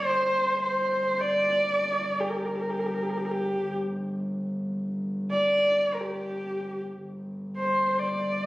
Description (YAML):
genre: mongolian traditional, Mongolian folk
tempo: free time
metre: none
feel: none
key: G yu mode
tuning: A4 = 440 Hz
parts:
  - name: warm horsehead fiddle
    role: melody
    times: 0.0-8.5 s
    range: G4 to D5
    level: -25 LUFS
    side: equal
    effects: none
  - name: warm double bass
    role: drone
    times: 0.0-8.5 s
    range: G1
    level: -33 LUFS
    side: equal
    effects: none
room: wet recital hall reverb, RT60 1.4 s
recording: recorded on a phone in the room, studio reverb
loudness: -25 LUFS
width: side -18 dB against mid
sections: 0.0-7.0 A section; 7.0-8.5 A section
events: none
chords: none